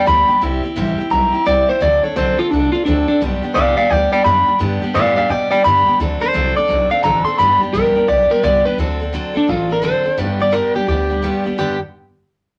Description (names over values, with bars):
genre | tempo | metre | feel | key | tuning
rockabilly | 172 BPM | 4/4 | swing 64% on 8ths | G major | A4 = 440 Hz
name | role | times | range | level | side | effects
electric guitar at the edge of break-up | melody | 0.0-11.8 s | D4 to C6 | -17 LUFS | equal | none
picked steel-string acoustic guitar | accompaniment | 0.0-11.8 s | G2 to A4 | -24 LUFS | equal | none
upright bass | bass | 0.1-11.8 s | G1 to B2 | -25 LUFS | equal | none
room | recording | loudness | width
moderate club reverb, RT60 0.6 s | none | -16 LUFS | mono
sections
0.0-8.8 A section; 8.8-11.6 B section; 11.6-12.6 C section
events
none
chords
0.4 C; 1.8 D7; 3.2 G; 6.0 D7; 7.4 G; 8.8 D7; 10.2 G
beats
0.07 | 0.42 0.77 1.12 1.47 | 1.82 2.17 2.51 2.86 | 3.21 3.56 3.91 4.25 | 4.60 4.95 5.30 5.65 | 6.00 6.34 6.69 7.04 | 7.39 7.74 8.09 8.44 | 8.79 9.13 9.48 9.83 | 10.18 10.53 10.88 11.23 | 11.58